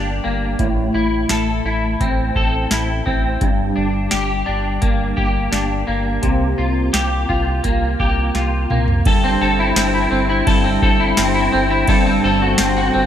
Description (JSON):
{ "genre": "dream pop", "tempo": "85 BPM", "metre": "4/4", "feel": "straight", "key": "unclear", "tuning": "A4 = 440 Hz", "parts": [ { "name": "clean electric guitar", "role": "arpeggios", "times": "0.0-13.1 s", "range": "G2 to A4", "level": "-17 LUFS", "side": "left 1 dB", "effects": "ensemble chorus, tape echo" }, { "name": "round analog bass", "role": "bass", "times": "0.0-13.1 s", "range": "G1 to C2", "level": "-22 LUFS", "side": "equal", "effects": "none" }, { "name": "booming analog drum machine", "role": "drums", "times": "0.6-12.8 s", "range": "hi-hat, kick drum, ride cymbal, snare drum, tambourine, toms", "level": "-19 LUFS", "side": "equal", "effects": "none" } ], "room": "light reverb, digital ambience", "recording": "none", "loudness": "-15 LUFS", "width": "side -10 dB against mid", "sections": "0.0-9.1 A section; 9.1-13.1 B section", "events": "drum fill 8.4-9.1", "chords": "0.0 Gm; 0.6 Am; 3.4 Gm; 6.2 C7sus4; 9.1 Am7/G; 11.9 Gsus24" }